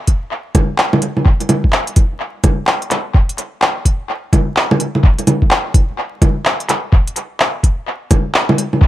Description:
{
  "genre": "future garage",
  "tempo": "127 BPM",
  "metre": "4/4",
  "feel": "swing 63% on 16ths",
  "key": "none",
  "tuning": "none",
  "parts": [
    { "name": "electronic kick drum", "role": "drums", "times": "0.1-8.9 s", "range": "none", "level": "-12 LUFS", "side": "equal", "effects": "none" },
    { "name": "organic electronic drum kit", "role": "drums", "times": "0.1-8.8 s", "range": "bongos, handclaps, hi-hat", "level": "-15 LUFS", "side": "equal", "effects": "analog delay" }
  ],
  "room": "light reverb",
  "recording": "echo-heavy mix, vinyl crackle",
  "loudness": "-13 LUFS",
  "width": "side -14 dB against mid",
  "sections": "0.0-8.9 A section",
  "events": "none",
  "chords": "none"
}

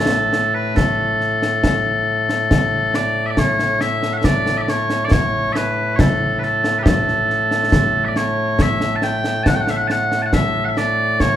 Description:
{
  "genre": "scottish traditional, Scottish pipe music",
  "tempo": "69 BPM",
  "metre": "3/4",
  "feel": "straight",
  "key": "A major",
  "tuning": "A4 = 439 Hz",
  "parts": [
    { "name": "loud bright bagpipes", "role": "melody", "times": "0.0-11.4 s", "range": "A2 to A5", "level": "-17 LUFS", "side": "equal", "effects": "none" },
    { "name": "concert snare drum and concert bass drum", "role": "drums", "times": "0.3-11.4 s", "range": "none", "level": "-19 LUFS", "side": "equal", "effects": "none" }
  ],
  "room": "moderate large studio reverb, RT60 1.4 s",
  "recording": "band playing live in one room",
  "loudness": "-15 LUFS",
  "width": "side -11 dB against mid",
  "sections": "0.0-3.4 A section; 3.4-11.4 A section",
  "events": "none",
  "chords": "none"
}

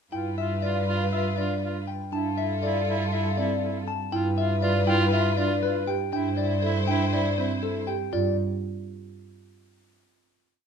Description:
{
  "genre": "classical, minimalist pattern music",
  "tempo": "120 BPM",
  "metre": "4/4",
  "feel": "straight",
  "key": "G mixolydian",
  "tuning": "A4 = 439 Hz",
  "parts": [
    { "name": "clean electric guitar", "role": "melody", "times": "0.1-8.4 s", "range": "A4 to A5", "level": "-30 LUFS", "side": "left 11 dB", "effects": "none" },
    { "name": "clear soprano saxophone", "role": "second line", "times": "0.1-7.8 s", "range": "E4 to F4", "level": "-32 LUFS", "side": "right 4 dB", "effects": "none" },
    { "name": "warm studio string section", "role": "sustained chords", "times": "0.1-7.8 s", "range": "E4 to C5", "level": "-33 LUFS", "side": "left 2 dB", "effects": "none" },
    { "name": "marimba with soft mallets", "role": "arpeggios", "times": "0.1-8.4 s", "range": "C4 to B4", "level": "-31 LUFS", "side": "right 7 dB", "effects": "none" },
    { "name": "warm double bass", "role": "bass", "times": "0.1-8.4 s", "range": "G2", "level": "-28 LUFS", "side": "right 2 dB", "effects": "none" }
  ],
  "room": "moderate recital hall reverb, RT60 1.4 s",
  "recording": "close, detailed microphones",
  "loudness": "-23 LUFS",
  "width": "side -7 dB against mid",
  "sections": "0.1-8.1 A section; 8.1-10.1 final chord",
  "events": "none",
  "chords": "0.1 G7; 2.1 Fmaj7/G; 4.1 G7; 6.1 C6/G; 8.1 G5"
}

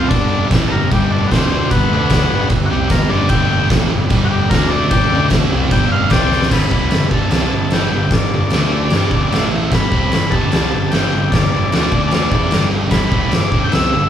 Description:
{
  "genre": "garage rock duo or trio",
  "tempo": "150 BPM",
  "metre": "4/4",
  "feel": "straight",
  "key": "G major",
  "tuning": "A4 = 438 Hz",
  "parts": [
    { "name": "combo organ", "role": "melody", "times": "0.0-14.1 s", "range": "B3 to G6", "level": "-21 LUFS", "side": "left 4 dB", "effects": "none" },
    { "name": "thick fuzz guitar", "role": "riff", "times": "0.0-14.1 s", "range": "G2 to G4", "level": "-18 LUFS", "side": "equal", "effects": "distortion" },
    { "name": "hollow-body short-scale fingered electric bass", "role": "bass", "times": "0.0-14.1 s", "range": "G1 to G2", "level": "-22 LUFS", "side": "equal", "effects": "none" },
    { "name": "combo organ", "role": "sustained chords", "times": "0.1-14.1 s", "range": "C4 to E5", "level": "-29 LUFS", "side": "right 1 dB", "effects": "none" },
    { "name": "oversized low-tuned drum kit", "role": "drums", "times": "0.1-13.8 s", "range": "crash cymbal, kick drum, snare drum", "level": "-16 LUFS", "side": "equal", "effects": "none" }
  ],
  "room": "moderate large studio reverb, RT60 1.0 s",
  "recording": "band playing live in one room",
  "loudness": "-13 LUFS",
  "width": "side -9 dB against mid",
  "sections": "0.0-6.5 A section; 6.5-14.1 B section",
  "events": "transistor combo organ solo 0.0-6.5; drum fill 6.3",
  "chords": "0.1 G; 1.3 D5; 1.7 G; 1.9 D5; 2.3 G; 4.5 D5; 4.9 G5; 5.1 D5; 5.5 G; 6.1 C5; 6.5 G; 8.5 D5; 8.9 G; 9.3 A5; 9.7 G; 11.9 D5; 12.3 G"
}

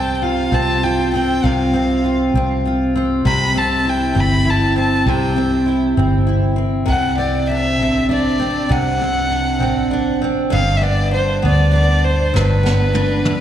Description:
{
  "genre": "six-eight pop ballad",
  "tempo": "66 BPM (dotted quarters)",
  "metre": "6/8",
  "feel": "straight",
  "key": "C major",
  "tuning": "A4 = 440 Hz",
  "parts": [
    { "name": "warm violin", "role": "melody", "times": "0.0-13.4 s", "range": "B4 to B5", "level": "-20 LUFS", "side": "left 1 dB", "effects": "slapback echo, ping-pong delay" },
    { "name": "picked steel-string acoustic guitar", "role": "accompaniment", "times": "0.0-13.3 s", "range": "G2 to F4", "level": "-18 LUFS", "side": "right 1 dB", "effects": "double-tracked left and right, slapback echo" },
    { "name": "vintage muted fingered electric bass", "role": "bass", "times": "0.0-13.2 s", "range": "G1 to D2", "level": "-19 LUFS", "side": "equal", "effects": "none" },
    { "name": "jazz brush drum kit", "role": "drums", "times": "12.4-13.4 s", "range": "snare drum, toms", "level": "-22 LUFS", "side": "right 1 dB", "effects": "none" }
  ],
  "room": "light reverb",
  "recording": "live gig heard through the venue's PA, recital hall reverb",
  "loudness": "-14 LUFS",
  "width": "side -10 dB against mid",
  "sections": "0.0-13.4 A section",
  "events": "drum fill 12.3-13.4",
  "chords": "0.0 F5/C; 3.2 C; 6.9 D7; 10.5 G"
}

